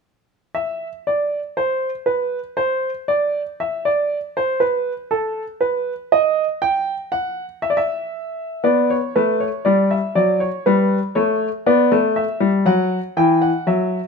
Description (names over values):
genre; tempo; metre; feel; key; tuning
classical, baroque-style two-part invention for grand piano; 60 BPM; 4/4; straight; E minor; A4 = 440 Hz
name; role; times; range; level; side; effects
warm grand piano; solo; 0.5-14.0 s; E3 to G5; -17 LUFS; equal; none
room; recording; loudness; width
moderate stone room reverb, RT60 1.0 s; minimal, uncompressed stereo recording; -17 LUFS; side -5 dB against mid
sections
0.6-14.1 A section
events
none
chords
0.6 N.C.; 8.7 Bm; 10.7 Em/G; 12.7 F#7(no3)